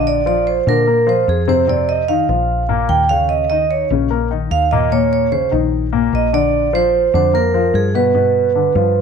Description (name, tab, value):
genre	Afro-Cuban jazz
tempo	148 BPM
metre	4/4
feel	straight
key	unclear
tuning	A4 = 440 Hz
part	vibraphone with medium hard mallets	melody	0.0-9.0 s	Ab4 to G5	-15 LUFS	right 7 dB	none
part	warm baby grand piano	accompaniment	0.0-9.0 s	Bb2 to Bb4	-19 LUFS	left 12 dB	none
part	fingered electric bass	bass	0.0-9.0 s	Bb1 to Bb2	-20 LUFS	left 2 dB	none
room	moderate echo chamber reverb, RT60 1.2 s, small room ambience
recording	1960s-style stereo with parts hard left and right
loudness	-13 LUFS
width	side -6 dB against mid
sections	0.0-9.0 A section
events	none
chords	0.1 Bbadd9; 1.7 F5; 2.5 Bb5; 3.3 Eb5; 6.5 Bb69; 8.2 G7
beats	| 0.06 0.47 0.87 1.27 | 1.68 2.08 2.49 2.90 | 3.30 3.71 4.11 4.51 | 4.92 5.32 5.73 6.13 | 6.54 6.94 7.34 7.75 | 8.15 8.55 8.96